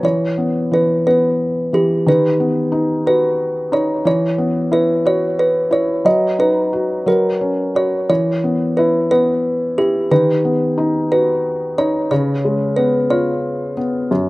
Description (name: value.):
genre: children's music, lullaby.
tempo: 60 BPM (dotted quarters).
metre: 6/8.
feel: rubato.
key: unclear.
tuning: A4 = 445 Hz.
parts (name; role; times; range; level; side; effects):
music box; melody; 0.0-14.3 s; G4 to D#5; -17 LUFS; right 1 dB; slapback echo.
felt-muted upright piano; accompaniment; 0.0-14.3 s; F#2 to F#4; -18 LUFS; left 1 dB; slapback echo.
room: little or no reverb.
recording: recorded outdoors, with no room sound.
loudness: -14 LUFS.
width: side -20 dB against mid.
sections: 0.0-14.3 A section.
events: none.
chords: 0.0 E5; 2.1 B/D#; 4.1 Esus2; 6.1 B/F#; 7.1 F#; 8.1 E5; 10.1 B/D#; 12.1 C#7.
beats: | 0.03 1.06 | 2.07 3.07 | 4.06 5.05 | 6.05 7.07 | 8.10 9.11 | 10.11 11.11 | 12.11 13.10 | 14.10.